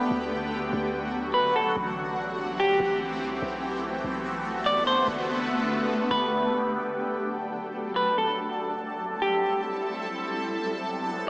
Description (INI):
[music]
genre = hip hop, atmospheric cloud-rap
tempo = 145 BPM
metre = 4/4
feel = half-time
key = unclear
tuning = A4 = 440 Hz
[part]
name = semi-hollow electric guitar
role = melody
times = 0.0-9.6 s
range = G4 to D5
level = -27 LUFS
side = equal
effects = wide subtle chorus, analog delay
[part]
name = shimmering ambient pad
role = sustained chords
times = 0.0-11.3 s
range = D3 to A4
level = -27 LUFS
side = equal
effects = chorus, built-in reverb, phaser
[part]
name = warm 808-style bass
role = bass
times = 0.0-6.7 s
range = G1 to D2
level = -39 LUFS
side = equal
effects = none
[sound]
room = wet plate reverb, RT60 3.1 s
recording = dreamy mix soaked in reverb, small speaker sound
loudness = -24 LUFS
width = side -26 dB against mid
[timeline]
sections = 0.0-6.7 A section; 6.7-11.3 B section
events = none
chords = 0.1 D; 1.8 Am7; 3.4 Bm7; 5.1 Gadd9; 6.7 D; 8.4 Am7; 10.0 Bm7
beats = | 0.11 0.53 0.94 1.35 | 1.77 2.18 2.59 3.01 | 3.42 3.83 4.25 4.66 | 5.08 5.49 5.90 6.32 | 6.73 7.15 7.56 7.97 | 8.39 8.80 9.21 9.63 | 10.04 10.46 10.87 11.28